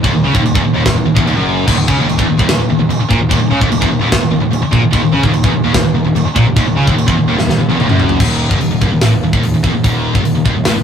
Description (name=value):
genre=heavy metal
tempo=147 BPM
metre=4/4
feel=straight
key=Eb phrygian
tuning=A4 = 440 Hz
part: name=distorted electric guitar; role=riff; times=0.0-8.2 s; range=Eb2 to Db3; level=-17 LUFS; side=right 2 dB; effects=overdrive
part: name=scooped high-gain guitar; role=riff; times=0.0-10.8 s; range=Eb2 to Db3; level=-17 LUFS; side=left 4 dB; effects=distortion
part: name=scooped high-gain guitar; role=riff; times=0.0-10.8 s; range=Eb2 to Db3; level=-19 LUFS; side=right 4 dB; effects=distortion
part: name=fuzz picked electric bass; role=bass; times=0.0-10.8 s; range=Eb1 to Db2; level=-18 LUFS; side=equal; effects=overdrive
part: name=tight metal drum kit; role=drums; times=0.0-10.7 s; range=china cymbal, crash cymbal, hi-hat, kick drum, snare drum, toms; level=-16 LUFS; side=equal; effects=none
room=wet small room reverb, RT60 0.6 s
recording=rough rehearsal-room recording, warm saturation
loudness=-10 LUFS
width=side -8 dB against mid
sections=0.0-8.2 A section; 8.2-10.8 B section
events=drum fill 7.4-8.2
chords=0.0 Ebm